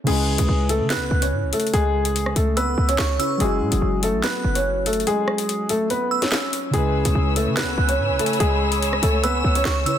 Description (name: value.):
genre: hip hop, drill.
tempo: 144 BPM.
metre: 4/4.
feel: half-time.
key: C# minor.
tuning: A4 = 439 Hz.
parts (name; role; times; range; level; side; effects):
warbly lo-fi synth keys; accompaniment; 0.0-10.0 s; C#3 to B4; -28 LUFS; left 1 dB; chorus.
dark grand piano; melody; 0.1-10.0 s; G#3 to C#5; -23 LUFS; equal; digital delay.
short 808-style bass; bass; 0.1-9.9 s; F#1 to C#3; -22 LUFS; equal; none.
drill drum kit; drums; 0.1-10.0 s; crash cymbal, handclaps, hi-hat, rim click, snare drum; -26 LUFS; left 1 dB; none.
glassy synth bell; second line; 0.9-10.0 s; C#6 to F#6; -28 LUFS; right 4 dB; chorus, digital delay.
dark symphonic string section; sustained chords; 6.7-10.0 s; C#5 to E6; -26 LUFS; equal; none.
room: light reverb, digital ambience.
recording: dense, heavily limited modern master.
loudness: -18 LUFS.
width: side -10 dB against mid.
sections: 0.1-10.0 A section.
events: kick muted 5.1-6.7.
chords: 0.1 C#m7; 3.4 F#m7; 6.7 C#m7.